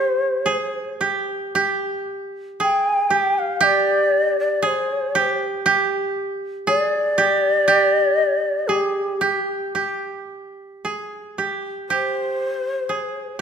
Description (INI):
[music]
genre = japanese traditional, Japanese chamber music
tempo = 54-61 BPM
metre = 2/4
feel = rubato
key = G in sen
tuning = A4 = 443 Hz
[part]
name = mellow hollow shakuhachi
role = melody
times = 0.0-13.4 s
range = G4 to G5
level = -20 LUFS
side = left 1 dB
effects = none
[part]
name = koto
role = second line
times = 0.0-13.4 s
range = G4 to Ab4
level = -22 LUFS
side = right 3 dB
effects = none
[sound]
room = moderate scoring stage reverb, RT60 1.6 s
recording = minimal, uncompressed stereo recording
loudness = -18 LUFS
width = side -7 dB against mid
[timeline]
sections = 0.0-9.8 A section; 9.8-13.4 B section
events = none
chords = none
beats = 0.46 | 1.54 2.60 | 3.62 4.63 | 5.66 6.67 | 7.66 8.67 | 9.75 10.84 | 11.89 12.90